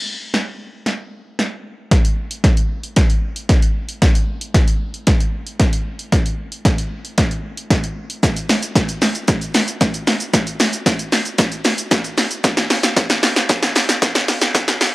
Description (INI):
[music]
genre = pop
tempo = 114 BPM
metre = 4/4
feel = straight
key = none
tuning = none
[part]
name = punchy analog drum machine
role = drums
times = 0.3-14.9 s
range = hi-hat, kick drum, shaker, snare drum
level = -15 LUFS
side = equal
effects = none
[sound]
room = light reverb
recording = dry, gritty hardware recording, cassette tape, high-pass filter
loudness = -15 LUFS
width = side -20 dB against mid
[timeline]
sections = 0.0-14.9 A section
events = build-up 0.0-14.9; drum fill 0.0-14.9; filter sweep 0.0-14.9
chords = none